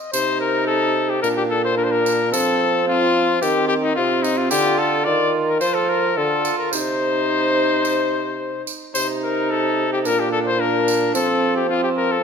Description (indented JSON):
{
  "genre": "classical, renaissance-style consort dance",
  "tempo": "109 BPM",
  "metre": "4/4",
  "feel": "straight",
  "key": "C dorian",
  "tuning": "A4 = 440 Hz",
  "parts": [
    { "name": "clear cornet", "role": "melody", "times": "0.0-12.2 s", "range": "Eb4 to Eb5", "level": "-20 LUFS", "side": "left 5 dB", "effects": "none" },
    { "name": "warm viola", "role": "second line", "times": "0.1-12.2 s", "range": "C4 to F4", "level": "-25 LUFS", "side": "right 5 dB", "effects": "none" },
    { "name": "dark bassoon", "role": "bass", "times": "0.1-12.2 s", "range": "Bb2 to F3", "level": "-22 LUFS", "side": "right 2 dB", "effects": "none" },
    { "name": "tambourine", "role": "percussion", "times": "0.1-11.4 s", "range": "none", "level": "-29 LUFS", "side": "right 7 dB", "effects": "none" }
  ],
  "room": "moderate recital hall reverb, RT60 1.5 s",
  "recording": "none",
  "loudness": "-17 LUFS",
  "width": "side -6 dB against mid",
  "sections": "0.1-9.0 A section; 9.0-12.2 A section",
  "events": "none",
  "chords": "0.1 Cm; 1.2 Bb; 2.3 F; 3.4 Cm/Eb; 4.5 Dm; 6.7 Cm; 10.1 Bb; 11.1 F5",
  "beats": "| 0.14 0.69 1.24 1.78 | 2.33 2.88 3.42 3.97 | 4.51 5.06 5.61 6.17 | 6.72 7.28 7.84 8.39 | 8.95 9.50 10.05 10.60 | 11.14 11.69"
}